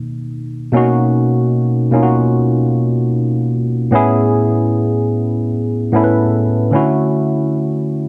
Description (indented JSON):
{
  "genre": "R&B",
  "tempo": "75 BPM",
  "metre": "4/4",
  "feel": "swing 63% on 16ths",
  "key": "B major",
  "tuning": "A4 = 439 Hz",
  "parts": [
    { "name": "tine electric piano", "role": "solo", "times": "0.0-8.1 s", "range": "A2 to B4", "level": "-15 LUFS", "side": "equal", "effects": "analog chorus" }
  ],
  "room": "little or no reverb",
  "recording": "dark, warm production",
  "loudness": "-15 LUFS",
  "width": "mono",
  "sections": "0.7-8.1 A section",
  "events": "none",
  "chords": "0.0 Bmaj7; 0.7 Bmaj9; 3.9 Amaj9; 6.7 Dmaj9"
}